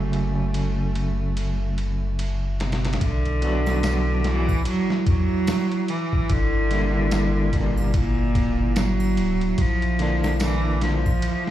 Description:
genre	trip hop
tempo	73 BPM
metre	4/4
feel	swing 59% on 16ths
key	B minor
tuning	A4 = 445 Hz
part	clear cello	melody	0.0-11.5 s	Bb2 to A3	-25 LUFS	right 2 dB	tape echo
part	electric guitar at the edge of break-up	accompaniment	0.0-11.1 s	C#3 to F#4	-28 LUFS	equal	tremolo, tape echo
part	deep dark ambient pad	sustained chords	0.0-11.5 s	E4 to E5	-33 LUFS	left 2 dB	chorus, built-in reverb
part	soft dub sub bass	bass	0.0-11.2 s	D1 to E2	-24 LUFS	equal	none
part	boom bap sampler-style drum kit	drums	0.1-11.5 s	kick drum, ride cymbal, snare drum	-27 LUFS	equal	high-pass filter on cymbals, high-pass filter on snare, high-pass filter on kick, high-pass filter on room
part	triangle and tambourine	percussion	3.7-11.2 s	none	-45 LUFS	right 5 dB	none
room	digital ambience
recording	played on a big sound system in a bare room, large studio reverb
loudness	-20 LUFS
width	side -12 dB against mid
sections	0.0-3.0 A section; 3.0-11.5 B section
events	filter sweep 0.0-3.0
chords	0.0 F#m; 3.0 Bm; 6.3 Gm; 9.6 A#

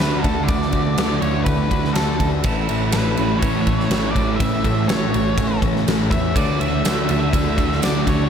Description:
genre	rock, shoegaze and dream pop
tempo	123 BPM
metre	4/4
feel	straight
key	D lydian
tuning	A4 = 440 Hz
part	octave-fuzz lead guitar	melody	0.0-8.3 s	A4 to E5	-26 LUFS	right 1 dB	distortion, analog delay
part	glassy FM pad	sustained chords	0.0-8.3 s	C#5 to E6	-31 LUFS	left 2 dB	ensemble chorus, built-in reverb
part	direct-recorded clean electric guitar	arpeggios	0.0-8.3 s	E3 to A4	-32 LUFS	left 8 dB	none
part	biting overdriven guitar	riff	0.0-8.3 s	A2 to F#4	-23 LUFS	right 9 dB	reverse reverb
part	thick fuzz guitar	riff	0.0-8.3 s	A2 to D4	-25 LUFS	left 10 dB	distortion, wide subtle chorus
part	growling picked electric bass	bass	0.0-8.3 s	A1 to E2	-24 LUFS	equal	overdrive
part	huge arena drum kit	drums	0.0-8.2 s	kick drum, ride cymbal, snare drum	-22 LUFS	equal	none
part	tambourine	percussion	6.8-7.9 s	none	-36 LUFS	right 10 dB	none
room	moderate concert hall reverb, RT60 2.3 s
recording	none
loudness	-17 LUFS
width	side -8 dB against mid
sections	0.0-8.3 A section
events	none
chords	0.0 Dadd9; 2.4 A; 6.4 Dadd9

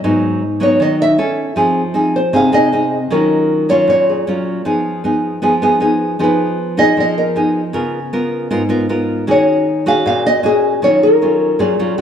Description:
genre	bossa nova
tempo	156 BPM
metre	4/4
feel	straight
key	Eb minor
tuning	A4 = 440 Hz
part	nylon-string guitar	accompaniment	0.0-12.0 s	Ab2 to Bb4	-15 LUFS	equal	none
part	nylon-string guitar	melody	0.6-12.0 s	Ab4 to F5	-15 LUFS	equal	none
room	wet echo chamber reverb, RT60 2.1 s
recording	heard from further back in the room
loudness	-12 LUFS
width	side -8 dB against mid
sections	0.0-10.8 A section; 10.8-12.0 B section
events	nylon-string guitar solo 0.0-10.8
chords	0.0 Abm7; 1.2 A/C#; 1.6 Fm7; 3.1 Ebm9; 4.6 Fm7b5; 7.7 Db6; 9.3 Ebm7; 10.8 Ebm9

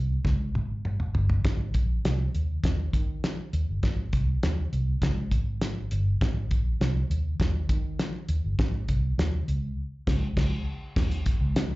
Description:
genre	uptempo 1960s-style soul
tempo	101 BPM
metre	4/4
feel	straight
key	Ab major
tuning	A4 = 440 Hz
part	vintage muted fingered electric bass	bass	0.0-11.6 s	G1 to Eb3	-26 LUFS	equal	none
part	cloth-damped thuddy drum kit	drums	0.2-11.7 s	crash cymbal, hi-hat, kick drum, snare drum, toms	-27 LUFS	equal	slapback echo
room	light reverb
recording	live gig heard through the venue's PA, club reverb, nothing above 7.7 kHz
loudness	-25 LUFS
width	side -20 dB against mid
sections	0.0-11.0 A section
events	drum fill 0.3-1.4; band accent 9.8-11.0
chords	none

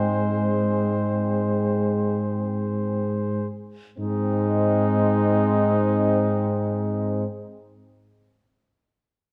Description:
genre	classical, hymn-like piece for brass band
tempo	free time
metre	none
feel	none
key	Ab major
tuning	A4 = 440 Hz
part	warm cornet	melody	0.0-7.3 s	Eb4 to C5	-32 LUFS	equal	none
part	mellow French horn section	second line	0.0-7.2 s	C4 to Ab4	-34 LUFS	equal	none
part	clear trombone	accompaniment	0.0-7.3 s	Ab3	-29 LUFS	equal	none
part	dark trombone section	accompaniment	0.0-7.3 s	C4	-35 LUFS	equal	none
part	mellow tuba	bass	0.0-7.3 s	Ab2	-26 LUFS	equal	none
room	wet recital hall reverb, RT60 1.6 s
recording	none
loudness	-23 LUFS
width	mono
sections	0.0-4.0 A section; 4.0-9.3 B section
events	slowing down 0.0-4.0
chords	0.0 Ab

